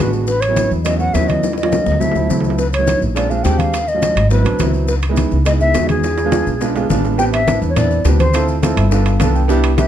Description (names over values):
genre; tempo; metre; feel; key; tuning
Afro-Cuban jazz; 208 BPM; 4/4; straight; unclear; A4 = 436 Hz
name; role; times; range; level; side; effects
mellow silver concert flute; melody; 0.0-9.9 s; G#4 to G5; -19 LUFS; left 1 dB; none
warm concert grand piano; accompaniment; 0.0-9.9 s; F#3 to A5; -19 LUFS; right 4 dB; none
upright bass; bass; 0.0-9.9 s; G1 to E2; -17 LUFS; equal; none
bongos; percussion; 0.1-9.9 s; none; -26 LUFS; left 10 dB; none
maracas; percussion; 0.1-9.9 s; none; -33 LUFS; left 5 dB; none
congas; percussion; 0.3-9.9 s; none; -22 LUFS; left 2 dB; none
timbales; percussion; 0.4-9.9 s; none; -26 LUFS; right 5 dB; none
room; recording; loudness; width
little or no reverb; dark, warm production; -13 LUFS; side -10 dB against mid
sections
0.0-7.2 A section; 7.2-9.9 B section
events
drum fill 1.4-2.6, 6.0-7.2; grand piano fill 8.6-9.5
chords
0.3 A69; 1.4 D#m7; 2.0 D9; 2.6 C#m11; 3.2 A#7; 3.7 D#m7b5; 4.3 G#7alt; 4.9 C#m9; 6.0 E7b9; 7.2 Am11; 8.3 Dm7; 8.9 G9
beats
| 0.28 0.57 0.86 1.15 | 1.43 1.72 2.01 2.30 | 2.58 2.87 3.16 3.45 | 3.74 4.02 4.31 4.60 | 4.89 5.17 5.46 5.75 | 6.04 6.33 6.62 6.90 | 7.19 7.48 7.77 8.05 | 8.34 8.63 8.92 9.21 | 9.49 9.78